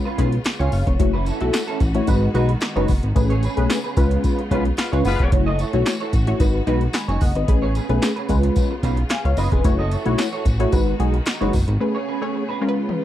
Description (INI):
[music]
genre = early-eighties boogie funk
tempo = 111 BPM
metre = 4/4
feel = straight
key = F# dorian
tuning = A4 = 439 Hz
[part]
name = funky polysynth comp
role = accompaniment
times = 0.0-13.0 s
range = G#3 to B5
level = -22 LUFS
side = left 2 dB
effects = chorus
[part]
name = bright studio string section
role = sustained chords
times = 0.0-13.0 s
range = C#3 to G#4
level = -32 LUFS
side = right 1 dB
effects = none
[part]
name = electric guitar at the edge of break-up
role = riff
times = 0.1-12.9 s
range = C#4 to D#5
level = -30 LUFS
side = right 5 dB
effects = ensemble chorus
[part]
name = chorused synth bass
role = bass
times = 0.2-11.8 s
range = E#1 to C#2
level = -20 LUFS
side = equal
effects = none
[part]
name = electro analog drum machine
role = drums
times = 0.2-13.0 s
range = handclaps, hi-hat, kick drum, snare drum, toms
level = -21 LUFS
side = equal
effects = none
[part]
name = tambourine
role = percussion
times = 0.4-11.7 s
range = none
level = -40 LUFS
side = left 3 dB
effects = none
[part]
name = dark horn section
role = second line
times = 4.5-5.3 s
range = G#3 to B4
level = -25 LUFS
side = left 4 dB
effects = none
[sound]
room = little or no reverb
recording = dry, close 1970s-style studio recording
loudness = -17 LUFS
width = side -12 dB against mid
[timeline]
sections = 0.0-13.0 A section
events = band accent 3.2-5.3; break 11.8-13.0; drum fill 12.9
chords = 0.0 C#7; 1.0 F#m7; 2.1 G#m7; 3.2 Amaj9; 4.0 C#7; 5.3 F#m7; 6.4 G#m7; 7.5 Amaj9; 8.3 C#7; 9.6 F#m7; 10.7 G#m7; 11.8 Amaj9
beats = 0.46 | 1.00 1.54 2.08 2.62 | 3.16 3.70 4.24 4.78 | 5.32 5.86 6.40 6.94 | 7.48 8.02 8.56 9.11 | 9.64 10.19 10.73 11.27 | 11.81 12.35 12.89